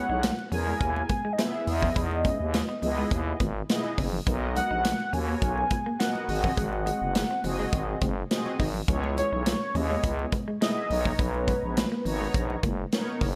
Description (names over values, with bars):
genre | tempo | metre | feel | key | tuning
early-eighties boogie funk | 104 BPM | 4/4 | straight | B major | A4 = 440 Hz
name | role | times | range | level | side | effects
warm velvety synth lead | melody | 0.0-12.9 s | B4 to G#5 | -33 LUFS | equal | chorus
mellow synth brass | accompaniment | 0.0-13.3 s | A#3 to A#5 | -36 LUFS | equal | chorus
semi-hollow electric guitar | riff | 0.1-13.3 s | G#3 to E4 | -38 LUFS | equal | lush chorus
growling FM bass | bass | 0.1-13.4 s | F#1 to E2 | -33 LUFS | equal | none
modern studio drum kit | drums | 0.2-13.4 s | hi-hat, kick drum, snare drum | -32 LUFS | equal | gated reverb
congas | percussion | 0.2-12.8 s | none | -40 LUFS | equal | none
room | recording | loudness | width
light reverb, small room ambience | none | -28 LUFS | mono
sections
0.0-13.4 A section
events
none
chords
0.0 C#m7; 1.7 Emaj7; 4.3 Bmaj7; 6.3 G#7; 8.9 C#m7; 10.9 Bmaj9